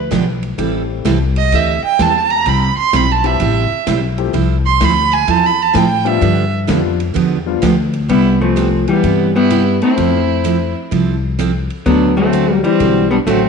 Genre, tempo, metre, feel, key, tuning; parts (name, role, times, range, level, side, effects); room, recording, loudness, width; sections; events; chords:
country, western swing; 128 BPM; 4/4; swing 66% on 8ths; C major; A4 = 442 Hz
upright bass; bass; 0.0-13.5 s; A1 to A2; -18 LUFS; left 3 dB
picked steel-string acoustic guitar; accompaniment; 0.1-13.4 s; C3 to A4; -19 LUFS; right 7 dB
swinging big-band drum kit; drums; 0.1-13.4 s; hi-hat, kick drum, ride cymbal, snare drum; -27 LUFS; left 3 dB
dark upright piano; accompaniment; 0.6-7.6 s; E3 to G4; -22 LUFS; left 14 dB
rich fiddle; second line; 1.4-13.5 s; B3 to C6; -17 LUFS; right 7 dB
vintage hollow-body jazz guitar; melody; 8.1-13.5 s; E3 to C4; -13 LUFS; left 3 dB
moderate echo chamber reverb, RT60 1.4 s, small room ambience; 1960s-style stereo with parts hard left and right, nothing above 10.9 kHz; -12 LUFS; side -5 dB against mid
0.0-8.1 A section; 8.1-13.5 B section
fiddle solo 0.0-8.1
0.0 G7; 0.6 Am7; 2.5 C; 4.3 Fmaj7; 6.2 G7; 8.1 Cmaj7; 10.0 Fmaj7; 11.9 D7